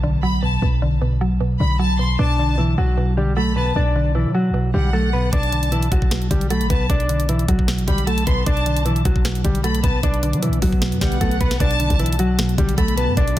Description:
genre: hip hop, trap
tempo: 153 BPM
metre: 4/4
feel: half-time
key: B minor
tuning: A4 = 440 Hz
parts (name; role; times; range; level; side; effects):
- mallet-like synth pluck; accompaniment; 0.0-13.4 s; B2 to F#3; -22 LUFS; right 2 dB; chorus, low-pass filter
- hard-hitting 808-style bass; bass; 0.0-13.4 s; A1 to F#3; -21 LUFS; equal; none
- impact and swell; sound effects; 0.0-0.6, 10.2-11.6 s; none; -33 LUFS; right 1 dB; none
- clear studio violin section; second line; 0.2-13.2 s; F#5 to C6; -27 LUFS; left 2 dB; ping-pong delay
- mellow electric guitar; melody; 2.2-13.4 s; E3 to D5; -23 LUFS; equal; spring reverb, low-pass filter, ping-pong delay
- trap drum kit; drums; 5.3-13.4 s; hi-hat, kick drum, snare drum; -21 LUFS; equal; none
- ethereal airy pad; sustained chords; 12.1-13.4 s; D3 to F#4; -34 LUFS; left 4 dB; none
room: light reverb, digital ambience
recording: dense, heavily limited modern master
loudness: -16 LUFS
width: side -14 dB against mid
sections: 0.0-11.6 A section; 11.6-13.4 B section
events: break 0.0-2.2; impact 0.0-0.6; swell 10.2-11.6; drum fill 11.2-11.6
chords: 0.0 Bm7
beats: 0.23 | 0.62 1.01 1.41 1.80 | 2.19 2.58 2.98 3.37 | 3.76 4.15 4.54 4.94 | 5.33 5.72 6.11 6.50 | 6.90 7.29 7.68 8.07 | 8.46 8.86 9.25 9.64 | 10.03 10.43 10.82 11.21 | 11.60 11.99 12.39 12.78 | 13.17

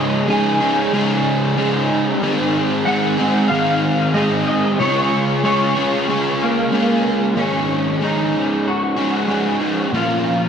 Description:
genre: rock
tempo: 93 BPM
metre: 4/4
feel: straight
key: Db major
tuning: A4 = 438 Hz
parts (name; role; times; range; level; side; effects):
- electric guitar through a small old amp; melody; 0.0-10.5 s; Bb3 to Ab5; -21 LUFS; equal; ensemble chorus, tape echo
- overdriven semi-hollow guitar; riff; 0.0-10.5 s; Ab2 to Bb4; -16 LUFS; equal; analog chorus
room: wet lush hall reverb, RT60 1.7 s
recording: dreamy mix soaked in reverb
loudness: -15 LUFS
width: side -7 dB against mid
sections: 0.0-7.4 A section; 7.4-10.5 B section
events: none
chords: 0.0 Dbsus2; 2.2 Ab; 4.8 Db6; 7.4 Absus4; 9.9 Bbm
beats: 0.29 0.94 1.58 | 2.22 2.87 3.51 4.15 | 4.79 5.44 6.08 6.72 | 7.36 8.01 8.65 9.29 | 9.93

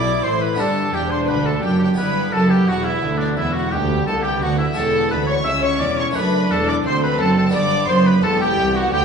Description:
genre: classical, baroque-style concerto movement with solo episodes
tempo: 86 BPM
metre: 4/4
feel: straight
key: G major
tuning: A4 = 441 Hz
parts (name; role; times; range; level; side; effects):
- rich chamber violin section; melody; 0.0-9.0 s; D5 to E6; -26 LUFS; equal; none
- warm oboe; melody; 0.0-9.0 s; D4 to E5; -23 LUFS; equal; none
- dark studio violin section; second line; 0.0-9.0 s; D4 to E5; -24 LUFS; left 1 dB; none
- harpsichord; accompaniment; 0.0-9.0 s; C2 to A4; -27 LUFS; left 1 dB; none
- rich chamber viola section; accompaniment; 0.0-9.0 s; B3 to E4; -26 LUFS; equal; none
- rich chamber cello section; bass; 0.0-9.0 s; C2 to B2; -22 LUFS; right 2 dB; none
- rich chamber double bass section; bass; 0.0-9.0 s; E1 to D2; -25 LUFS; right 1 dB; none
room: moderate scoring stage reverb, RT60 1.7 s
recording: none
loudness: -16 LUFS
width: side -6 dB against mid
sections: 0.0-9.0 A section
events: none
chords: 0.0 G; 2.0 Em; 4.8 Bm11/E; 6.2 D; 7.5 G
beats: 0.58 1.28 | 1.98 2.67 3.37 4.07 | 4.76 5.46 6.15 6.85 | 7.54 8.24 8.93

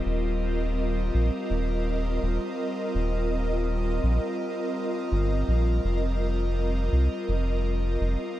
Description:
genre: ambient dub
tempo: 83 BPM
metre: 4/4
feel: straight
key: unclear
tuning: A4 = 440 Hz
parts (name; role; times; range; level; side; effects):
- airy breathy pad; sustained chords; 0.0-8.4 s; G3 to Eb5; -28 LUFS; equal; chorus
- soft dub sub bass; bass; 0.1-8.2 s; Eb1 to C2; -25 LUFS; equal; tube saturation
room: light reverb, digital ambience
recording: none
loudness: -24 LUFS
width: side -14 dB against mid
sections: 0.0-8.4 A section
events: none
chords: 0.0 Eb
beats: | 0.06 0.78 1.51 2.23 | 2.95 3.67 4.40 5.12 | 5.84 6.57 7.29 8.01

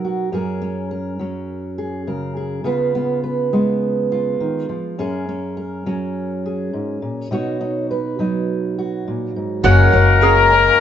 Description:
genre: folk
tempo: 103 BPM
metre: 4/4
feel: straight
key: F# major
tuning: A4 = 442 Hz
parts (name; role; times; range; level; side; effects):
- fingerpicked steel-string acoustic guitar; accompaniment; 0.0-10.8 s; F#2 to C#5; -21 LUFS; right 2 dB; none
- mellow accordion; melody; 9.6-10.8 s; F#5 to A#5; -16 LUFS; equal; none
- warm trumpet; second line; 9.6-10.8 s; A#4; -14 LUFS; left 7 dB; none
- picked twelve-string acoustic guitar; accompaniment; 9.6-10.8 s; F#2 to G#4; -22 LUFS; equal; none
- hand-pumped harmonium; sustained chords; 9.6-10.8 s; C#3 to F#4; -24 LUFS; left 1 dB; none
- ukulele; arpeggios; 9.6-10.8 s; F#4 to G#4; -20 LUFS; right 4 dB; none
- upright bass; bass; 9.6-10.7 s; F#1; -14 LUFS; left 2 dB; none
room: wet studio reverb, RT60 0.5 s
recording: band playing live in one room, nothing above 7.8 kHz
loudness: -17 LUFS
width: side -9 dB against mid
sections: 0.0-9.6 A section; 9.6-10.8 B section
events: none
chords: 0.3 F#add9; 2.7 C#7; 5.0 F#add9; 7.3 Badd9; 9.6 F#add9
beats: | 0.32 0.91 1.49 2.07 | 2.65 3.23 3.82 4.40 | 4.98 5.57 6.15 6.73 | 7.31 7.89 8.48 9.06 | 9.64 10.22 10.80

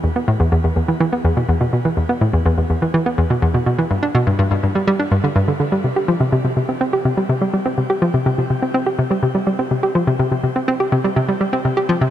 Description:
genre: ambient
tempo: 124 BPM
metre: 4/4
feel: straight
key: E minor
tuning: A4 = 440 Hz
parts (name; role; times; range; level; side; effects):
- hollow square pluck; solo; 0.0-12.1 s; E2 to G4; -15 LUFS; equal; chorus, ping-pong delay
room: moderate shimmer reverb, RT60 7.4 s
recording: none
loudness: -15 LUFS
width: side -11 dB against mid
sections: 0.0-5.8 A section; 5.8-12.1 B section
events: none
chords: none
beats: | 0.04 0.52 1.00 1.49 | 1.97 2.46 2.94 3.42 | 3.91 4.39 4.88 5.36 | 5.84 6.33 6.81 7.30 | 7.78 8.26 8.75 9.23 | 9.71 10.20 10.68 11.17 | 11.65

